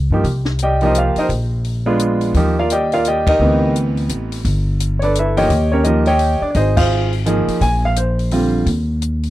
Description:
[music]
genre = jazz piano trio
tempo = 171 BPM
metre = 3/4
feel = swing 63% on 8ths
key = unclear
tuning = A4 = 438 Hz
[part]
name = upright bass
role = bass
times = 0.0-9.3 s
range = G1 to G2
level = -18 LUFS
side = equal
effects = none
[part]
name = warm concert grand piano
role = melody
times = 0.1-8.7 s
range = D3 to Ab5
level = -16 LUFS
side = right 1 dB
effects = none
[part]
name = compact cocktail drum kit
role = drums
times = 0.2-9.3 s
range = crash cymbal, hi-hat, kick drum, ride cymbal, snare drum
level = -24 LUFS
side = left 1 dB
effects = none
[sound]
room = little or no reverb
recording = dry, close 1970s-style studio recording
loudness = -14 LUFS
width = side -15 dB against mid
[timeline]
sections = 0.0-4.4 A section; 4.4-9.3 B section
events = band accent 3.2, 6.7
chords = 0.2 Cm7; 1.3 Bb7b9; 2.3 Ebmaj9; 3.4 Dsus2; 4.4 G69; 5.5 Eb7; 6.5 Ab6; 7.6 Bb69; 8.7 N.C.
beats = | 0.23 0.59 0.94 | 1.29 1.64 1.99 | 2.34 2.69 3.04 | 3.40 3.75 4.10 | 4.45 4.80 5.15 | 5.50 5.85 6.20 | 6.55 6.90 7.25 | 7.60 7.95 8.30 | 8.65 9.00

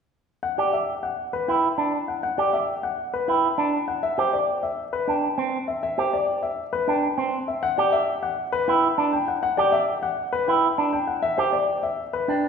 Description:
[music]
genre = classical, minimalist pattern music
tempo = 100 BPM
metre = 3/4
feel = straight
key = G major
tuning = A4 = 440 Hz
[part]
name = warm grand piano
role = melody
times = 0.4-12.5 s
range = B4 to G5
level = -24 LUFS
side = left 5 dB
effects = none
[part]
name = electric guitar with an envelope filter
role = arpeggios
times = 0.6-12.5 s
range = C4 to G4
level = -24 LUFS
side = right 5 dB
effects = none
[sound]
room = wet recital hall reverb, RT60 1.7 s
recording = recorded in a church or concert hall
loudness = -21 LUFS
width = side -6 dB against mid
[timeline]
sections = 0.4-12.5 A section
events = none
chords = 0.4 Gmaj7(no3); 4.0 C; 7.6 Gmaj7(no3); 11.2 C (rootless)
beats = | 0.43 1.03 1.63 | 2.23 2.83 3.43 | 4.03 4.63 5.23 | 5.83 6.43 7.03 | 7.63 8.23 8.83 | 9.43 10.03 10.63 | 11.23 11.83 12.43

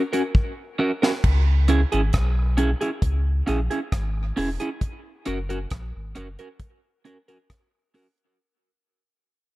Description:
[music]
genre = dub reggae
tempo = 67 BPM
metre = 4/4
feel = straight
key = C# dorian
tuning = A4 = 440 Hz
[part]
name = electric guitar at the edge of break-up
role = accompaniment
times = 0.1-8.1 s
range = C#4 to A#4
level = -25 LUFS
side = right 1 dB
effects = phaser, dub echo
[part]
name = deep reggae drum kit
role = drums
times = 0.1-8.4 s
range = crash cymbal, hi-hat, kick drum, rim click, snare drum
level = -23 LUFS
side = equal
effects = none
[part]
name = warm sub bass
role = bass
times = 1.2-6.4 s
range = E1 to C#2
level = -22 LUFS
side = equal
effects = none
[sound]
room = light reverb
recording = dark, warm production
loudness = -21 LUFS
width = side -18 dB against mid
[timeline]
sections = 0.0-1.2 A section; 1.2-8.4 B section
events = break 0.0-1.2; drum fill 0.3-1.2; fade-out 1.2-8.4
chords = 0.0 F#; 1.2 C#m; 4.8 F#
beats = 0.34 | 1.24 2.13 3.02 3.92 | 4.81 5.71 6.60 7.50

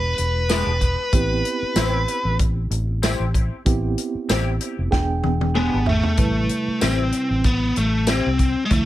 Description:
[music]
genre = straight-eighth soul blues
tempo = 95 BPM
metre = 4/4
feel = swing 55% on 16ths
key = A minor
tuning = A4 = 440 Hz
[part]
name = biting lead guitar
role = melody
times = 0.0-8.9 s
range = G#3 to B4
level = -22 LUFS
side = left 1 dB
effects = overdrive
[part]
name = mellow reed electric piano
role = accompaniment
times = 0.0-8.9 s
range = C3 to G#5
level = -28 LUFS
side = right 5 dB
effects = fast tremolo
[part]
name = vintage muted fingered electric bass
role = bass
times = 0.0-8.9 s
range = E1 to D2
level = -23 LUFS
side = equal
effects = none
[part]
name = warm soul drum kit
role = drums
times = 0.2-8.9 s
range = hi-hat, kick drum, snare drum, tambourine, toms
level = -22 LUFS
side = equal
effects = none
[part]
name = electric guitar through a small old amp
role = stabs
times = 0.5-8.3 s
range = G3 to G4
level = -30 LUFS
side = left 6 dB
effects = ensemble chorus, digital delay
[sound]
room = little or no reverb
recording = none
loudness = -18 LUFS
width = side -14 dB against mid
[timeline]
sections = 0.0-6.2 A section; 6.2-8.9 A section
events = drum fill 4.9-6.2; reed electric piano fill 5.2-6.2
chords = 0.0 E7#9; 1.1 Am7; 4.9 E7#9; 6.2 Am7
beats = 0.50 | 1.13 1.76 2.40 3.03 | 3.66 4.29 4.92 5.55 | 6.18 6.82 7.45 8.08 | 8.71

